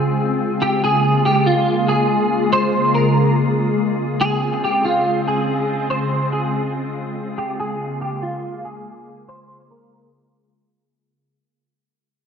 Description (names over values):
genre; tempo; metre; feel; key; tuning
hip hop; 142 BPM; 4/4; half-time; Bb dorian; A4 = 442 Hz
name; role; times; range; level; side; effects
glassy FM pad; sustained chords; 0.0-10.9 s; Db3 to Ab4; -19 LUFS; left 1 dB; ensemble chorus, built-in reverb, low-pass filter
clean electric guitar; melody; 0.6-10.1 s; F4 to C5; -20 LUFS; right 1 dB; ensemble chorus, low-pass filter, analog delay
room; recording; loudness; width
moderate plate reverb, RT60 2.7 s; none; -16 LUFS; side -7 dB against mid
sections
0.0-4.2 A section; 4.2-11.0 B section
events
fade-out 4.2-11.0; filter sweep 4.2-11.0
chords
0.0 Dbmaj7; 0.8 Bbm7; 4.2 Dbmaj7; 7.6 Bbm7